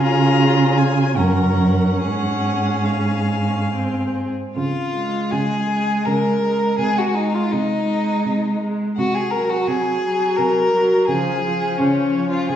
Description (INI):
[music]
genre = classical, slow romantic movement for string quartet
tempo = 69-86 BPM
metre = 3/4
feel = rubato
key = Db major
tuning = A4 = 441 Hz
[part]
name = rich violin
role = melody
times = 0.0-12.6 s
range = Db5 to Bb5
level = -29 LUFS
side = left 7 dB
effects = none
[part]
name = clear violin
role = second line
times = 0.0-12.6 s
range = Db4 to Bb4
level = -22 LUFS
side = left 2 dB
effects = none
[part]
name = clear viola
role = accompaniment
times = 0.0-12.6 s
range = F3 to F4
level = -22 LUFS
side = right 1 dB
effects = none
[part]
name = warm cello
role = bass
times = 0.0-12.6 s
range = Gb2 to Db3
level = -21 LUFS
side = right 2 dB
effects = none
[sound]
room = wet recital hall reverb, RT60 1.5 s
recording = heard from further back in the room, nothing above 8.0 kHz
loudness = -17 LUFS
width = side -10 dB against mid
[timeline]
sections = 0.0-4.6 A section; 4.6-12.6 B section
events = none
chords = 0.0 Db; 1.2 Gb; 2.0 Db/Ab; 3.7 Ab; 4.6 Db; 6.8 Ab/C; 9.0 Ab7/C; 11.1 Db